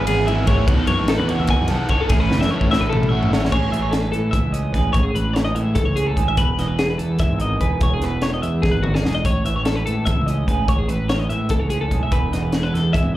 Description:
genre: math rock and midwest emo.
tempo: 294 BPM (eighths).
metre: 7/8.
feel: straight.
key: unclear.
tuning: A4 = 440 Hz.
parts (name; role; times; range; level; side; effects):
electric guitar through a small old amp; accompaniment; 0.0-13.2 s; E2 to A4; -25 LUFS; right 5 dB; slapback echo.
twelve-string electric guitar; arpeggios; 0.0-13.1 s; F#4 to G#5; -24 LUFS; left 3 dB; analog chorus, slapback echo.
overdriven electric guitar; riff; 0.0-3.5 s; G#2 to A4; -25 LUFS; equal; slapback echo.
fuzz fingered electric bass; bass; 0.0-13.2 s; E1 to A2; -22 LUFS; equal; overdrive.
crisp fusion drum kit; drums; 0.1-13.0 s; crash cymbal, hi-hat, kick drum, ride cymbal, snare drum, toms; -21 LUFS; equal; none.
room: little or no reverb.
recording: live gig heard through the venue's PA, club reverb.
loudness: -17 LUFS.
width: side -15 dB against mid.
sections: 0.0-3.5 A section; 3.5-13.2 B section.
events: drum fill 2.3-3.5, 8.6-9.2.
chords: 0.0 E6/G#; 0.7 B9sus4; 2.1 A69; 3.5 Amaj7; 6.4 Emaj7; 9.2 Amaj7; 12.1 E.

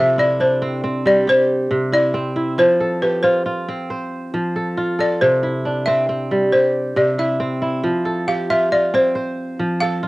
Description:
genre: west african traditional.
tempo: 91 BPM (dotted quarters).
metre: 12/8.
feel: straight.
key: C major.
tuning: A4 = 440 Hz.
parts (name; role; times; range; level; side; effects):
balafon; melody; 0.0-10.1 s; B4 to F5; -17 LUFS; equal; cassette tape.
kora; arpeggios; 0.0-10.1 s; C3 to C5; -20 LUFS; right 1 dB; cassette tape.
room: wet booth ambience, RT60 0.2 s.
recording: home recording on cassette.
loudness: -16 LUFS.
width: side -20 dB against mid.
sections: 0.0-10.1 A section.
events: balafon solo 0.0-10.1.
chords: 0.0 C; 2.6 F; 5.2 C; 7.8 F.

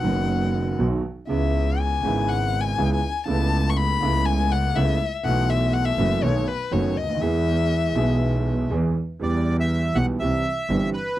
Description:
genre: tango.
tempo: 121 BPM.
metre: 4/4.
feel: rubato.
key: E major.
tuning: A4 = 440 Hz.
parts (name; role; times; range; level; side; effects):
warm violin; second line; 0.0-8.7 s; B4 to C#6; -26 LUFS; left 7 dB; none.
warm concert grand piano; accompaniment; 0.0-11.2 s; F#1 to G#4; -24 LUFS; right 3 dB; none.
clear double bass; bass; 0.0-10.9 s; F#1 to E2; -24 LUFS; equal; none.
bandoneon; melody; 9.2-11.2 s; B4 to F#5; -27 LUFS; right 1 dB; none.
room: little or no reverb.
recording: dry, close 1970s-style studio recording.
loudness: -20 LUFS.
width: side -14 dB against mid.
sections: 0.0-9.2 A section; 9.2-11.2 B section.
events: violin solo 0.0-9.2.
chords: 0.0 B; 1.3 C#m7; 3.3 Aadd9/C#; 5.2 B7sus4; 6.2 B7; 7.2 E; 9.2 Em; 10.2 C.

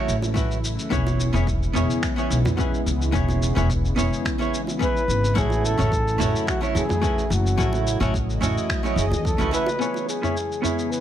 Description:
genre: sunset chillout.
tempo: 108 BPM.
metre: 4/4.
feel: straight.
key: E major.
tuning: A4 = 440 Hz.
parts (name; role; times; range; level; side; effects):
hollow-body jazz guitar; accompaniment; 0.0-11.0 s; A3 to E5; -26 LUFS; moving between left 3 dB and right 4 dB; auto-pan, low-pass filter, tape echo.
lush unison pad; sustained chords; 0.0-11.0 s; C#3 to D#5; -30 LUFS; equal; chorus.
upright bass; bass; 0.1-9.5 s; E1 to E2; -23 LUFS; equal; none.
dusty soul sampler-style drum kit; drums; 0.1-11.0 s; finger snaps, shaker, toms; -30 LUFS; equal; none.
bongos; percussion; 0.2-10.1 s; none; -34 LUFS; right 4 dB; none.
electronic kick drum; drums; 0.4-9.4 s; none; -28 LUFS; equal; overdrive.
breathy flugelhorn; melody; 4.8-11.0 s; F#4 to B4; -27 LUFS; equal; tape echo.
room: light reverb.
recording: none.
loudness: -20 LUFS.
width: side -10 dB against mid.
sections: 0.0-9.8 A section; 9.8-11.0 B section.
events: filter sweep on hollow-body jazz guitar 9.8-11.0.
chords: 0.0 A6; 0.9 E6; 5.4 A6; 9.8 E6.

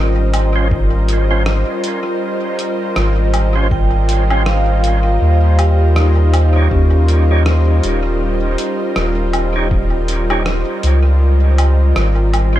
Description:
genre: ambient dub.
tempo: 80 BPM.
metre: 4/4.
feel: swing 58% on 16ths.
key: Eb mixolydian.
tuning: A4 = 440 Hz.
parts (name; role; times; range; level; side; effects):
warm analog pad; sustained chords; 0.0-12.6 s; G3 to Eb5; -20 LUFS; equal; wide subtle chorus.
vibraphone with hard mallets; arpeggios; 0.0-11.2 s; Db4 to G5; -24 LUFS; equal; tape echo.
soft dub sub bass; bass; 0.0-12.6 s; Eb1 to Eb2; -13 LUFS; equal; none.
lo-fi sampler-style drum kit; drums; 0.3-12.5 s; hi-hat, rim click, woodblock; -24 LUFS; equal; dub echo.
percussive tonewheel organ; stabs; 0.6-12.6 s; Db4 to Db5; -25 LUFS; right 3 dB; overdrive, fast rotary speaker, vintage 12-bit sampler grit, dub echo.
electronic kick drum; drums; 0.7-9.9 s; none; -18 LUFS; equal; none.
room: light reverb, digital ambience.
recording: none.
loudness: -12 LUFS.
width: side -13 dB against mid.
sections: 0.0-12.6 A section.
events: none.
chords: 0.0 Dbmaj7; 5.2 Eb7; 11.2 Dbmaj7.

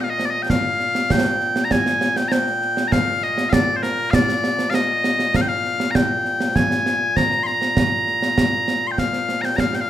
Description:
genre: scottish traditional, Scottish pipe music.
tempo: 99 BPM.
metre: 4/4.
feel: straight.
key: Bb mixolydian.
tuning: A4 = 441 Hz.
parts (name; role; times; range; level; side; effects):
loud bright bagpipes; melody; 0.0-9.9 s; Bb2 to C6; -20 LUFS; left 1 dB; none.
concert snare drum and concert bass drum; drums; 0.2-9.9 s; none; -21 LUFS; right 1 dB; none.
room: moderate recital hall reverb, RT60 1.4 s.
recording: minimal, uncompressed stereo recording.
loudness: -17 LUFS.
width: side -11 dB against mid.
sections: 0.0-9.0 A section.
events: none.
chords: none.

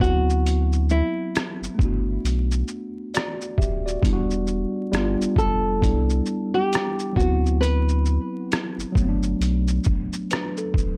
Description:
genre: lo-fi hip hop.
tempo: 67 BPM.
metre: 4/4.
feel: swing 60% on 16ths.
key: unclear.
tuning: A4 = 439 Hz.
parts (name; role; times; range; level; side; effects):
nylon-string guitar; melody; 0.0-8.9 s; E4 to B4; -28 LUFS; equal; low-pass filter.
tine electric piano; accompaniment; 0.0-11.0 s; F#3 to E5; -29 LUFS; equal; cassette tape, low-pass filter.
soft dub sub bass; bass; 0.0-11.0 s; D1 to D2; -25 LUFS; equal; none.
trip hop sampler-style drum kit; drums; 0.0-11.0 s; hi-hat, kick drum, rim click, shaker; -27 LUFS; equal; none.
room: little or no reverb.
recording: dry, gritty hardware recording, vinyl crackle.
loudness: -23 LUFS.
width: mono.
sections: 0.0-11.0 A section.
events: none.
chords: 0.0 D13; 1.8 Gmaj7; 4.0 Em9; 4.9 G7; 5.8 Cmaj9; 7.2 D13; 9.0 Gmaj7.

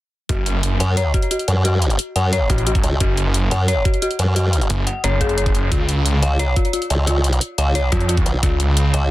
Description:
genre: dark technical drum and bass.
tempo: 177 BPM.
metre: 4/4.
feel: straight.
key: F# harmonic minor.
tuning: A4 = 444 Hz.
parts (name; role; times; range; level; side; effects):
dark detuned synth bell; arpeggios; 0.3-9.1 s; E#4 to F#5; -24 LUFS; left 2 dB; chorus, sidechain pumping, dub echo.
snarling distorted saw bass; bass; 0.3-8.9 s; F#1 to E#2; -18 LUFS; equal; distortion, tube saturation, sidechain pumping.
electronic hi-hat; drums; 0.3-9.0 s; none; -25 LUFS; left 1 dB; none.
electronic kick drum; drums; 0.3-8.5 s; none; -20 LUFS; equal; none.
formant-sweep wobble bass; bass; 0.8-9.1 s; B1 to F#2; -17 LUFS; equal; chorus.
room: digital ambience.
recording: dense, heavily limited modern master.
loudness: -16 LUFS.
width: side -16 dB against mid.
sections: 0.3-9.1 A section.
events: none.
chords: 0.3 F#m; 5.7 C#.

